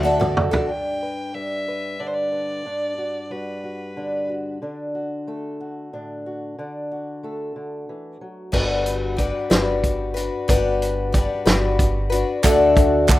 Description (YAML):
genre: indie folk with a building arrangement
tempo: 61 BPM (dotted quarters)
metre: 6/8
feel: straight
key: G major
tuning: A4 = 440 Hz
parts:
  - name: rich fiddle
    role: melody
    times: 0.0-4.3 s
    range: B4 to G5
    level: -32 LUFS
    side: equal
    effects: digital delay
  - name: picked twelve-string acoustic guitar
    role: accompaniment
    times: 0.0-0.7, 8.5-13.2 s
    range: D3 to B4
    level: -20 LUFS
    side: left 4 dB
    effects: none
  - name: pedal harmonium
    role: sustained chords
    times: 0.0-0.7, 12.4-13.2 s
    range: D3 to A4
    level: -31 LUFS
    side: right 3 dB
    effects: none
  - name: large celesta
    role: arpeggios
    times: 0.0-0.7, 12.4-13.2 s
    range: A4 to A5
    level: -23 LUFS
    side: right 6 dB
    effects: none
  - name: upright bass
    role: bass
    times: 0.0-0.5, 8.5-13.2 s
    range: G1 to D2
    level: -26 LUFS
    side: right 1 dB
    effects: none
  - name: loose indie drum kit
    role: drums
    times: 0.2-0.7, 8.5-13.2 s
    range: crash cymbal, hi-hat, kick drum, snare drum, toms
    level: -20 LUFS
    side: right 1 dB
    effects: none
  - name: fingerpicked old ladder-braced acoustic guitar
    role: accompaniment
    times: 0.7-8.5 s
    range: G2 to B4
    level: -28 LUFS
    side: equal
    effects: none
  - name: group handclap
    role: percussion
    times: 12.4-13.2 s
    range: none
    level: -24 LUFS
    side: right 4 dB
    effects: none
  - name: tambourine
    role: percussion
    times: 12.4-12.6 s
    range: none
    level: -35 LUFS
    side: right 6 dB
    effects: none
room: small room ambience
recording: rough home demo mix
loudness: -20 LUFS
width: side -16 dB against mid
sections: 0.7-8.5 A section; 8.5-13.2 B section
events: drum fill 0.0-0.7, 8.5-13.2; build-up 8.5-13.2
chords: 0.0 D; 0.7 Gmaj7; 4.6 D; 8.5 Gmaj7; 12.4 D